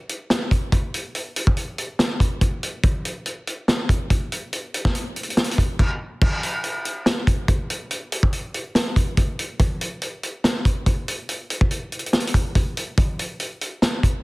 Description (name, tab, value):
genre	hip hop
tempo	142 BPM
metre	4/4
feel	half-time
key	none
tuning	none
part	vintage drum kit	drums	0.1-14.1 s	crash cymbal, hi-hat, kick drum, snare drum	-20 LUFS	equal	none
room	light reverb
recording	dense, heavily limited modern master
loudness	-20 LUFS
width	side -24 dB against mid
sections	0.0-6.2 A section; 6.2-14.2 B section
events	none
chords	none